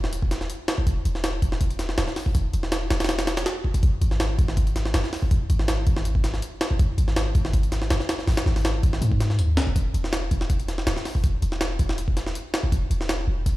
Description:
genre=drum and bass, jungle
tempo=162 BPM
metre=4/4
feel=straight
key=unclear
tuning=A4 = 440 Hz
part: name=warm 808-style bass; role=bass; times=0.0-13.6 s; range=D1 to G#2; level=-24 LUFS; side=equal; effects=none
part: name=jungle sampler-style drum kit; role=drums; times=0.0-13.6 s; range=hi-hat, kick drum, snare drum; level=-24 LUFS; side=equal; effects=small room reverb
room=digital ambience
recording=played on a big sound system in a bare room, large studio reverb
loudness=-21 LUFS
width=side -18 dB against mid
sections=0.0-13.6 A section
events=none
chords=none

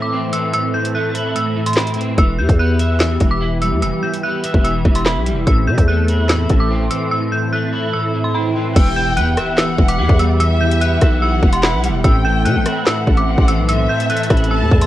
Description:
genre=hip hop, drill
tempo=146 BPM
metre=4/4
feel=half-time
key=E minor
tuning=A4 = 438 Hz
part: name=dark detuned synth bell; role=melody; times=0.0-14.9 s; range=B5 to G6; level=-22 LUFS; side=equal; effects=chorus, low-pass filter
part: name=electric guitar at the edge of break-up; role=accompaniment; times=0.0-14.9 s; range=A2 to E5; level=-21 LUFS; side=right 1 dB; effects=ensemble chorus, low-pass filter
part: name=warm analog pad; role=sustained chords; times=0.0-14.9 s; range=E3 to E5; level=-24 LUFS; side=left 1 dB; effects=chorus
part: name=drill drum kit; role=drums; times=0.3-14.9 s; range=crash cymbal, handclaps, hi-hat, kick drum, rim click, snare drum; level=-16 LUFS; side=equal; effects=none
part: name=growling 808-style bass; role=bass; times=2.2-14.9 s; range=E1 to C3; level=-17 LUFS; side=equal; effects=none
part: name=swell and impact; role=sound effects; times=7.6-10.4 s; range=none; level=-28 LUFS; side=right 2 dB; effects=none
part: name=warm studio violin section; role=second line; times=8.8-14.9 s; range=E5 to A5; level=-23 LUFS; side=left 1 dB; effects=ping-pong delay
room=digital ambience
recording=worn, warbling old tape, cassette tape, warbly pitch drift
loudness=-14 LUFS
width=side -14 dB against mid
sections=0.0-8.8 A section; 8.8-14.9 B section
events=break 0.0-2.2, 7.1-8.8; swell 7.6-8.8; impact 8.8-10.4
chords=0.0 Am; 2.2 Em; 5.5 Am; 8.8 Em; 12.0 Am

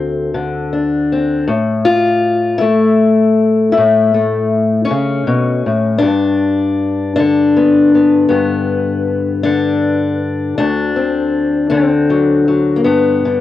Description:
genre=acoustic country blues, solo or duo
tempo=53 BPM (dotted quarters)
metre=12/8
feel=straight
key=unclear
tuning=A4 = 440 Hz
part: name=fingerpicked steel-string acoustic guitar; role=solo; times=0.0-13.4 s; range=D2 to A4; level=-12 LUFS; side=left 3 dB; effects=cassette tape
room=light reverb, small room ambience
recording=home recording on cassette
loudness=-12 LUFS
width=side -13 dB against mid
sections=0.0-13.4 A section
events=none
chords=0.0 D5; 1.5 A; 6.0 G; 10.6 D7; 12.9 G

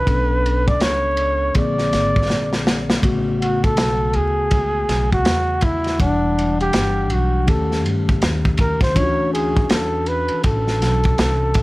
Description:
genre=hip hop, jazz-hop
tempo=81 BPM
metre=4/4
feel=swing 62% on 16ths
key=A major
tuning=A4 = 440 Hz
part: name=breathy flugelhorn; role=melody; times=0.0-11.6 s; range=D4 to D5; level=-21 LUFS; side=equal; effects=tape echo
part: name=mellow tine electric piano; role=accompaniment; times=0.0-11.6 s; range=C#3 to F#5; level=-24 LUFS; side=left 2 dB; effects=none
part: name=upright bass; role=bass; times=0.0-11.6 s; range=E1 to G2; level=-22 LUFS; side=equal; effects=none
part: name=crunchy breakbeat drum kit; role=drums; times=0.1-11.6 s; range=hi-hat, kick drum, ride cymbal, snare drum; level=-20 LUFS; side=equal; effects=none
room=light reverb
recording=vinyl crackle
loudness=-16 LUFS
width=side -20 dB against mid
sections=0.0-3.0 A section; 3.0-11.6 B section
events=drum fill 2.3-3.0; flugelhorn solo 3.0-11.6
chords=0.1 Bm9; 1.6 Bb9; 3.0 A69; 6.0 Em9; 7.5 D#7#11; 9.0 Dmaj9

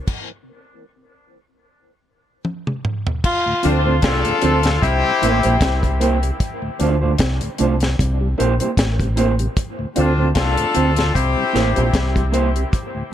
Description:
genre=dub reggae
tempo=76 BPM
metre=4/4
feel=swing 56% on 16ths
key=D minor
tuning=A4 = 440 Hz
part: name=deep reggae drum kit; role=drums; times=0.1-12.9 s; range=crash cymbal, hi-hat, kick drum, snare drum, toms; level=-21 LUFS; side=equal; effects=none
part: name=clear tenor saxophone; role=melody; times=3.2-3.6 s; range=F4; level=-25 LUFS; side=equal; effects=dub echo
part: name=mellow tonewheel organ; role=accompaniment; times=3.5-13.0 s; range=D2 to F4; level=-28 LUFS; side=left 2 dB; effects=chorus vibrato, slow rotary speaker, dub echo
part: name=warm horn section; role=second line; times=3.6-12.3 s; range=C4 to A4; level=-21 LUFS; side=left 4 dB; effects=dub echo
part: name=mellow electric guitar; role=accompaniment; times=3.6-12.5 s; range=A3 to C5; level=-23 LUFS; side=right 5 dB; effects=dub echo
part: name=fingered electric bass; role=bass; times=3.7-12.6 s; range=A1 to D2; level=-19 LUFS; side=equal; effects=none
room=light reverb, small room ambience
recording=none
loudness=-16 LUFS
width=side -11 dB against mid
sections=0.0-3.2 A section; 3.2-13.1 B section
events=break 0.0-3.2; stop 0.1-3.2; drum fill 2.4-3.2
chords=0.1 N.C.; 3.2 Dm7; 4.8 C7; 6.4 Dm7; 8.0 C7; 9.6 Dm7; 11.1 C7

